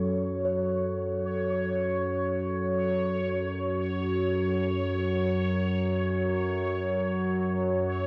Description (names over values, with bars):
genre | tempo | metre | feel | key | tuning
dark ambient drone | free time | none | none | F# minor | A4 = 441 Hz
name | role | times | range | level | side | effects
bronze singing bowl | arpeggios | 0.0-6.6 s | F#3 to C#5 | -37 LUFS | equal | delay
analog drone | drone | 0.0-8.1 s | F#2 to F#3 | -30 LUFS | equal | chorus
bubbling stepped-filter texture | texture | 0.0-8.1 s | C#5 | -36 LUFS | equal | chorus, built-in reverb
room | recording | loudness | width
wet cathedral reverb, RT60 5.6 s | cassette tape | -28 LUFS | mono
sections
0.0-8.1 A section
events
none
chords
0.0 F#5